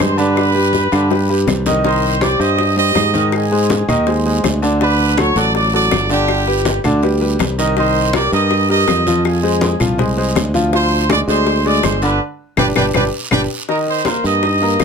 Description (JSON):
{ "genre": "latin, salsa", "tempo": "162 BPM", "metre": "4/4", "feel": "straight", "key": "C minor", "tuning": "A4 = 439 Hz", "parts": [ { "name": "clear trumpet section", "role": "melody", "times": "0.0-14.8 s", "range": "G4 to Eb6", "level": "-18 LUFS", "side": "right 2 dB", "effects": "none" }, { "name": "bright upright piano", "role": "accompaniment", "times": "0.0-14.8 s", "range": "D3 to Eb6", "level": "-18 LUFS", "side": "equal", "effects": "none" }, { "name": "modern bright fingered electric bass", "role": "bass", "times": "0.0-14.8 s", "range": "G1 to Ab2", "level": "-18 LUFS", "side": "right 1 dB", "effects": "none" }, { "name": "bongos", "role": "percussion", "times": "0.0-14.8 s", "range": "none", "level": "-22 LUFS", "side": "left 9 dB", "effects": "none" }, { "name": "claves", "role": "percussion", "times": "0.0-14.8 s", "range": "none", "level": "-25 LUFS", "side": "left 10 dB", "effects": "none" }, { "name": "guiro", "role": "percussion", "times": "0.0-14.8 s", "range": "none", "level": "-29 LUFS", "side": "right 5 dB", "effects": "none" }, { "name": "congas", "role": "percussion", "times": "0.2-14.8 s", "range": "none", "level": "-23 LUFS", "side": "left 2 dB", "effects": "none" } ], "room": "light reverb", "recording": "close, detailed microphones", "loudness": "-13 LUFS", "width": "side -6 dB against mid", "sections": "0.0-1.8 A section; 1.8-13.7 A section; 13.7-14.8 B section", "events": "drum fill 1.1-1.8, 12.6-13.7; band accent 12.2-13.7", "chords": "0.4 G; 1.8 Cm; 3.3 Ab; 4.8 D; 6.3 G; 7.8 Cm7; 9.2 Fm; 10.7 Ddim; 12.2 G; 13.7 Eb", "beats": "0.00 | 0.37 0.74 1.11 1.48 | 1.85 2.22 2.59 2.96 | 3.33 3.70 4.07 4.44 | 4.81 5.18 5.55 5.92 | 6.29 6.66 7.03 7.40 | 7.77 8.14 8.51 8.88 | 9.25 9.62 9.99 10.36 | 10.73 11.10 11.47 11.84 | 12.21 12.58 12.95 13.32 | 13.69 14.06 14.43 14.80" }